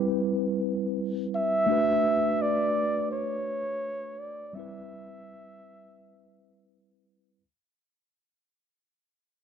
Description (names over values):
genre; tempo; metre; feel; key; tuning
reggae; 84 BPM; 4/4; swing 57% on 16ths; unclear; A4 = 440 Hz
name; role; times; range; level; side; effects
mellow tine electric piano; accompaniment; 0.0-7.4 s; G3 to B4; -29 LUFS; left 1 dB; medium stereo tremolo
breathy flugelhorn; melody; 1.4-6.7 s; C#5 to E5; -28 LUFS; right 2 dB; tape echo
room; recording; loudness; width
light reverb; dry, close 1970s-style studio recording; -24 LUFS; side -7 dB against mid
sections
0.0-7.4 A section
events
fade-out 0.0-7.4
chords
0.0 Cmaj7; 1.7 D6; 4.6 Cmaj7